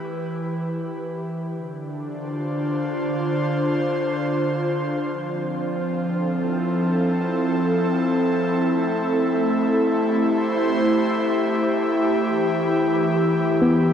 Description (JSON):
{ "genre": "ambient", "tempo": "67 BPM", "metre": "4/4", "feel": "straight", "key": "D dorian", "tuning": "A4 = 440 Hz", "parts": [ { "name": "airy breathy pad", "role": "sustained chords", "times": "0.0-13.9 s", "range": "D3 to C5", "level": "-20 LUFS", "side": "equal", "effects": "chorus" }, { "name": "soft round pluck", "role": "arpeggios", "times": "13.6-13.9 s", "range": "B3", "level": "-18 LUFS", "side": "left 1 dB", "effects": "chorus" } ], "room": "wet huge ambient reverb, RT60 8.8 s", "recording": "none", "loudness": "-20 LUFS", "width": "side -8 dB against mid", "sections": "0.0-13.9 A section", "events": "fade-in on analog synth pad 0.0-13.9", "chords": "0.0 Em; 1.5 Dm7; 5.1 Fmaj7; 8.7 Am7; 12.3 Em" }